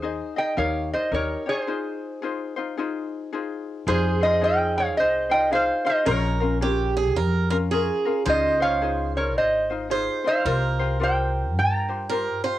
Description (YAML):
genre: Hawaiian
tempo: 109 BPM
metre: 4/4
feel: swing 62% on 8ths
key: Ab major, F minor from 3.9 s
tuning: A4 = 440 Hz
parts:
  - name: lap resonator guitar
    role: melody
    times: 0.0-12.4 s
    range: Ab4 to Bb5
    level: -23 LUFS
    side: right 1 dB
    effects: plate reverb
  - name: ukulele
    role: accompaniment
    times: 0.0-12.6 s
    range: Db4 to Eb5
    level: -29 LUFS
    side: left 6 dB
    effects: cassette tape
  - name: upright bass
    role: bass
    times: 0.0-12.3 s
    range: Ab1 to G2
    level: -26 LUFS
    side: equal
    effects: none
  - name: picked swing-style acoustic guitar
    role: second line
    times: 3.9-12.6 s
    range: G4 to C5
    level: -28 LUFS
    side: right 6 dB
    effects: cassette tape
room: moderate booth ambience, RT60 0.2 s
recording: home recording on cassette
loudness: -21 LUFS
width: side -14 dB against mid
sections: 0.0-3.9 A section; 3.9-12.6 B section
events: break 1.7-3.9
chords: 0.0 Ab/Eb; 0.6 Eb7; 1.7 Ab6; 3.9 Fm7; 6.1 Bbm7; 8.3 Dbmaj9; 10.5 C7sus4